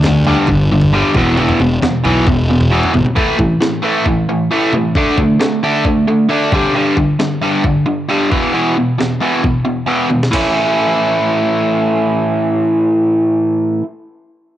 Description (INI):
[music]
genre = indie rock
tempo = 134 BPM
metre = 4/4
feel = straight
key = A major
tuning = A4 = 440 Hz
[part]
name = biting overdriven guitar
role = riff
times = 0.0-13.8 s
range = E2 to E4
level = -12 LUFS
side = equal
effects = cassette tape
[part]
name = fuzz fingered electric bass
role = bass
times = 0.0-3.0 s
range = E1 to D2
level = -15 LUFS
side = equal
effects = overdrive
[part]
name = breakbeat sampler-style drum kit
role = drums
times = 0.0-10.4 s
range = kick drum, ride cymbal, snare drum, toms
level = -19 LUFS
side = equal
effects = cassette tape
[sound]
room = light reverb, digital ambience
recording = home recording on cassette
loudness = -12 LUFS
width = side -12 dB against mid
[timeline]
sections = 0.0-10.3 A section; 10.3-13.9 B section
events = drum fill 10.1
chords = 0.0 G5; 1.2 E5; 3.2 A5; 5.0 D5; 6.5 G5; 8.3 E5; 10.3 A